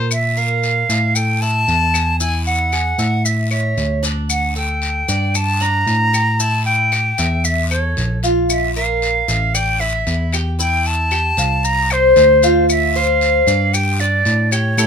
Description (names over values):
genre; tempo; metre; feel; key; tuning
latin, Cuban son and guajira; 114 BPM; 4/4; straight; unclear; A4 = 440 Hz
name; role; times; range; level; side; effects
Cuban tres; arpeggios; 0.0-14.9 s; D4 to F5; -20 LUFS; left 1 dB; none
barky tine electric piano; bass; 0.0-14.9 s; A1 to Bb2; -19 LUFS; equal; none
silver concert flute; melody; 0.1-14.9 s; C5 to Bb5; -18 LUFS; right 1 dB; none
claves; percussion; 0.1-14.9 s; none; -25 LUFS; left 6 dB; none
guiro; percussion; 0.1-14.9 s; none; -29 LUFS; left 5 dB; none
maracas; percussion; 0.1-14.9 s; none; -24 LUFS; left 5 dB; none
room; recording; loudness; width
light reverb; minimal, uncompressed stereo recording; -14 LUFS; side -6 dB against mid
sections
0.1-14.9 A section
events
none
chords
0.1 Bb5; 1.2 A5; 3.3 A; 4.3 D5; 5.3 Gm; 6.4 A7; 8.5 Bb5; 9.5 Asus4; 10.6 C6; 11.6 Csus4; 12.7 Dm7; 13.7 G5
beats
| 0.11 0.63 1.16 1.68 | 2.20 2.73 3.25 3.77 | 4.30 4.82 5.35 5.87 | 6.40 6.92 7.45 7.97 | 8.49 9.02 9.54 10.07 | 10.59 11.12 11.64 12.16 | 12.69 13.21 13.74 14.26 | 14.78